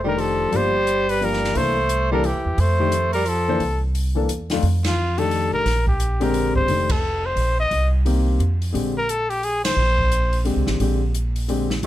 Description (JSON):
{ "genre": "jazz, small-group swing and bop", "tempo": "175 BPM", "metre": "3/4", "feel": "swing 63% on 8ths", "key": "F mixolydian", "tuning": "A4 = 439 Hz", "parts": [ { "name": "clear trumpet", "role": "melody", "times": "0.0-10.4 s", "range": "F4 to Eb5", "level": "-22 LUFS", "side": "left 1 dB", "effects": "none" }, { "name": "clear tenor saxophone", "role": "second line", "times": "0.0-3.6 s", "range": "E3 to A3", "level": "-25 LUFS", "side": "right 4 dB", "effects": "none" }, { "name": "warm grand piano", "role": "accompaniment", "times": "0.0-11.9 s", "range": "F2 to C5", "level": "-24 LUFS", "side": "left 4 dB", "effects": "none" }, { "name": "upright bass", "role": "bass", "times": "0.0-11.9 s", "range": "F1 to F2", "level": "-22 LUFS", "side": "right 1 dB", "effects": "none" }, { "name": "open jazz drum kit", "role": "drums", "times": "0.2-11.9 s", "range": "hi-hat, kick drum, ride cymbal, snare drum", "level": "-29 LUFS", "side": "equal", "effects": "none" } ], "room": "light reverb", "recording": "close, detailed microphones", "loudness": "-18 LUFS", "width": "side -14 dB against mid", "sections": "0.0-4.6 A section; 4.6-11.9 A section", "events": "band accent 4.8, 6.9, 9.6", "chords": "0.0 F13; 0.5 Gm7; 1.6 C13; 2.6 F6; 3.6 C69; 4.6 F13; 5.7 Bb13; 6.7 F13; 7.7 Cm7; 8.4 N.C.; 8.7 Bb13", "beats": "0.18 | 0.53 0.87 1.21 | 1.55 1.89 2.23 | 2.58 2.92 3.26 | 3.60 3.94 4.29 | 4.63 4.97 5.31 | 5.66 6.00 6.34 | 6.68 7.02 7.37 | 7.71 8.05 8.40 | 8.74 9.08 9.43 | 9.77 10.11 10.46 | 10.80 11.14 11.49 | 11.83" }